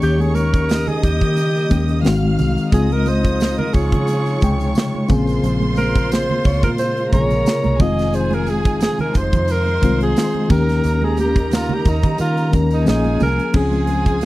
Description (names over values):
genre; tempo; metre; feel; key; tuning
lush 1970s-style soul; 89 BPM; 4/4; swing 54% on 16ths; Bb dorian; A4 = 443 Hz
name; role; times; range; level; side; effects
warm alto saxophone; melody; 0.0-14.2 s; Eb4 to Eb5; -22 LUFS; right 1 dB; none
warm studio violin section; second line; 0.0-14.2 s; Ab4 to F6; -28 LUFS; right 1 dB; none
mellow reed electric piano; accompaniment; 0.0-14.2 s; C3 to G5; -21 LUFS; left 3 dB; fast tremolo
dark studio string section; sustained chords; 0.0-14.2 s; Bb2 to C5; -28 LUFS; right 2 dB; none
vintage muted fingered electric bass; bass; 0.0-14.2 s; F1 to Eb3; -20 LUFS; equal; none
modern studio drum kit; drums; 0.0-14.2 s; crash cymbal, hi-hat, kick drum, snare drum; -18 LUFS; right 1 dB; none
tambourine; percussion; 0.0-13.4 s; none; -43 LUFS; right 4 dB; none
congas; percussion; 0.2-14.1 s; none; -27 LUFS; right 5 dB; none
room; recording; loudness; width
little or no reverb; dry, close 1970s-style studio recording; -15 LUFS; side -17 dB against mid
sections
0.0-13.5 A section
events
alto saxophone solo 0.0-13.5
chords
0.0 Eb7; 2.0 Ab7; 2.7 Dbmaj7; 5.1 Bbm9; 7.8 Fm7; 10.5 Eb7; 12.9 Bbm7; 13.5 Dbmaj7